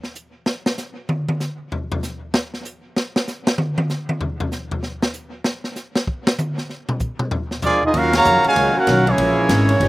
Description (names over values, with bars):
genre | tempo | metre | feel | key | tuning
jazz, big band swing | 193 BPM | 4/4 | swing 63% on 8ths | Eb minor | A4 = 441 Hz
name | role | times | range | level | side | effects
swinging big-band drum kit | drums | 0.0-9.9 s | hi-hat, kick drum, ride cymbal, snare drum, toms | -22 LUFS | equal | none
mellow trombone section | second line | 7.6-9.9 s | Bb2 to Gb4 | -21 LUFS | right 2 dB | slapback echo
warm trumpet section | melody | 7.7-9.9 s | Bb3 to Bb5 | -16 LUFS | right 1 dB | none
picked plugged-in steel-string acoustic guitar | accompaniment | 7.9-9.9 s | Bb2 to G4 | -26 LUFS | left 3 dB | none
warm saxophone section | sustained chords | 7.9-9.9 s | Db3 to Gb4 | -27 LUFS | left 1 dB | none
upright bass | bass | 7.9-9.9 s | G1 to F2 | -20 LUFS | equal | none
room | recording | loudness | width
little or no reverb | recorded outdoors, with no room sound | -18 LUFS | side -18 dB against mid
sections
0.0-7.9 A section; 7.9-9.9 B section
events
drum solo 0.0-7.9; band accent 8.1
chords
0.0 N.C.; 6.7 Bb7 (rootless); 7.9 Ebm9; 9.2 Bbm7b5